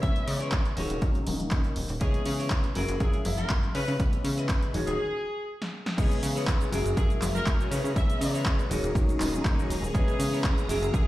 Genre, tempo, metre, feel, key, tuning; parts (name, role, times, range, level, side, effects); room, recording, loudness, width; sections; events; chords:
filtered disco house; 121 BPM; 4/4; straight; C# dorian; A4 = 440 Hz
warm horn section; melody; 0.0-11.1 s; G#4 to E5; -36 LUFS; left 1 dB; sidechain pumping, low-pass filter, dub echo
warm grand piano; accompaniment; 0.0-11.1 s; D#3 to E5; -33 LUFS; left 1 dB; phaser, sidechain pumping, low-pass filter
clean electric guitar; riff; 0.0-11.1 s; D#4 to E5; -36 LUFS; left 1 dB; vintage 12-bit sampler grit, sidechain pumping, low-pass filter
plucky analog bass; bass; 0.0-11.0 s; D#1 to C#3; -31 LUFS; equal; sidechain pumping, low-pass filter
electronic kick drum; drums; 0.0-11.0 s; -26 LUFS; equal; overdrive, small room reverb
punchy analog drum machine; drums; 0.0-11.0 s; cabasa, crash cymbal, handclaps, hi-hat, snare drum; -35 LUFS; equal; overdrive, sidechain pumping on hats, small room reverb, sidechain pumping on cymbals, sidechain pumping on perc
tube shaker; percussion; 0.0-5.0 s; -50 LUFS; equal
string machine, full ensemble; sustained chords; 6.0-11.1 s; G#4 to A#5; -39 LUFS; right 1 dB; phaser, ensemble chorus, sidechain pumping, low-pass filter
light reverb; played on a big sound system in a bare room, stone room reverb; -25 LUFS; side -16 dB against mid
0.0-6.0 A section; 6.0-11.1 B section
break 5.0-6.0; drum fill 5.6-6.0; drop 6.0-11.1
0.0 C#m7; 0.8 D#m7; 2.0 C#m7; 2.8 F#9; 3.7 C#m7; 4.7 D#m7; 6.0 C#m7; 6.7 F#9; 7.7 C#m7; 8.7 D#m7; 9.9 C#m7